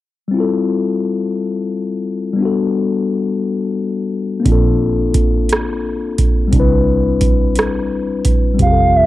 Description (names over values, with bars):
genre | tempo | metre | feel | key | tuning
slow six-eight R&B | 58 BPM (dotted quarters) | 6/8 | straight | F major | A4 = 442 Hz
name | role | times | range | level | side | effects
mellow tine electric piano | accompaniment | 0.3-9.1 s | G3 to B4 | -17 LUFS | left 4 dB | medium stereo tremolo, cassette tape
vintage muted fingered electric bass | bass | 4.5-9.1 s | F1 to C2 | -19 LUFS | right 2 dB | none
booming analog drum machine | drums | 4.5-8.8 s | hi-hat, kick drum, rim click | -16 LUFS | right 2 dB | none
hollow clarinet-like synth lead | melody | 8.6-9.1 s | E5 to F5 | -12 LUFS | right 2 dB | chorus, cassette tape
room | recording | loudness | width
light reverb | home recording on cassette | -14 LUFS | side -15 dB against mid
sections
0.3-8.6 A section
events
none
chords
0.3 Fmaj9; 2.4 Gmaj9; 4.5 Bbmaj9; 6.5 Cmaj9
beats
| 0.32 1.35 | 2.39 3.42 | 4.46 5.49 | 6.53 7.56 | 8.60